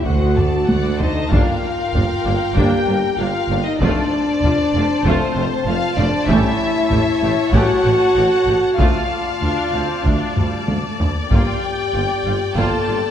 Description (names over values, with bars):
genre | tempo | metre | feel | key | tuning
cinematic, epic orchestral film score | 96 BPM | 4/4 | straight | G minor | A4 = 439 Hz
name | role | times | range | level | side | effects
rich symphonic violin section | melody | 0.0-13.1 s | C5 to A5 | -25 LUFS | left 3 dB | none
clear symphonic violin section | second line | 0.0-13.1 s | Bb4 to A5 | -27 LUFS | left 4 dB | none
rich symphonic viola section | accompaniment | 0.0-13.0 s | G3 to A4 | -26 LUFS | right 1 dB | none
mellow French horn section | sustained chords | 0.0-13.1 s | C4 to A4 | -20 LUFS | left 2 dB | none
clear symphonic double bass section | bass | 0.0-13.0 s | F1 to D2 | -24 LUFS | right 2 dB | none
clear tuba | bass | 0.0-13.0 s | F1 to D2 | -27 LUFS | right 3 dB | none
rich symphonic cello section | bass | 0.1-13.0 s | D2 to A2 | -27 LUFS | right 2 dB | none
taiko ensemble | drums | 0.1-13.1 s | none | -21 LUFS | equal | none
warm trombone section | sustained chords | 1.3-12.8 s | F3 to C#4 | -31 LUFS | right 2 dB | none
room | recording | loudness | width
wet scoring stage reverb, RT60 2.1 s | dark, warm production | -15 LUFS | side -9 dB against mid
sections
0.0-1.3 A section; 1.3-13.1 A section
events
drum fill 0.4-1.3, 10.4-11.3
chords
0.1 D7; 1.3 Gm7; 3.8 F; 6.3 A7; 8.8 Dm; 11.3 Gm7